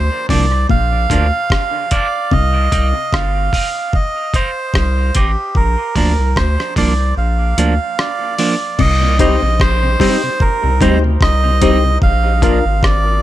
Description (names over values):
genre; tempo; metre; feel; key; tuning
dub reggae; 74 BPM; 4/4; swing 57% on 16ths; C minor; A4 = 440 Hz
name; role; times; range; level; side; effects
melodica; melody; 0.0-13.2 s; G4 to F5; -18 LUFS; right 3 dB; dub echo
mellow electric guitar; riff; 0.0-2.6, 8.8-9.0 s; Bb2 to D3; -22 LUFS; left 6 dB; harmonic tremolo, dub echo
round analog bass; bass; 0.0-13.2 s; G1 to D2; -15 LUFS; equal; none
clean electric guitar; accompaniment; 0.3-12.6 s; F3 to Eb4; -22 LUFS; right 4 dB; high-pass filter, dub echo
dusty soul sampler-style drum kit; drums; 0.3-13.0 s; crash cymbal, hi-hat, kick drum, rim click; -17 LUFS; equal; none
mellow tonewheel organ; accompaniment; 9.0-11.9 s; C3 to Eb4; -26 LUFS; left 3 dB; none
percussive organ stab; stabs; 9.2-12.6 s; D4 to C5; -20 LUFS; left 6 dB; chorus, dub echo
room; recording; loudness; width
little or no reverb; none; -12 LUFS; side -14 dB against mid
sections
0.0-8.8 A section; 8.8-13.2 B section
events
break 0.0-8.8; filter sweep on clean electric guitar 0.0-5.6; kick muted 7.2-8.8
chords
0.0 Bb; 2.3 Cm; 5.6 Bb; 8.8 Cm; 12.0 Bb